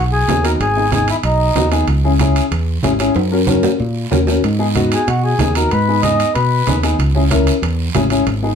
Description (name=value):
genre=latin, cumbia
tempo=188 BPM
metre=4/4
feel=straight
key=G# minor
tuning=A4 = 440 Hz
part: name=mellow accordion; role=second line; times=0.0-1.7, 4.9-6.8 s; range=D#4 to D#5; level=-17 LUFS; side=left 2 dB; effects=none
part: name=fingered electric bass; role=bass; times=0.0-8.6 s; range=G#1 to B2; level=-17 LUFS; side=right 1 dB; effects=none
part: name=dark upright piano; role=accompaniment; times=0.3-8.5 s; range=B3 to A#4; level=-18 LUFS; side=left 3 dB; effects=none
part: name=congas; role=percussion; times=0.3-8.4 s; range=none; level=-22 LUFS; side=right 2 dB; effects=none
part: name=guiro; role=percussion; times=0.3-8.6 s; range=none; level=-29 LUFS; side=right 6 dB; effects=none
part: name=timbales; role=percussion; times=0.3-8.4 s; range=none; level=-24 LUFS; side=right 3 dB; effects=none
room=wet studio ambience, RT60 0.5 s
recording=heard from further back in the room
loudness=-13 LUFS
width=side -7 dB against mid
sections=0.0-8.6 A section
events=accordion solo 0.0-8.6; drum fill 3.2-4.4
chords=0.0 G#m; 1.9 C#m; 3.2 F#; 4.4 G#m; 7.0 C#m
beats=0.29 | 0.61 0.93 1.25 1.56 | 1.88 2.20 2.52 2.84 | 3.16 3.48 3.80 4.12 | 4.44 4.76 5.08 5.39 | 5.71 6.03 6.35 6.67 | 6.99 7.31 7.63 7.95 | 8.27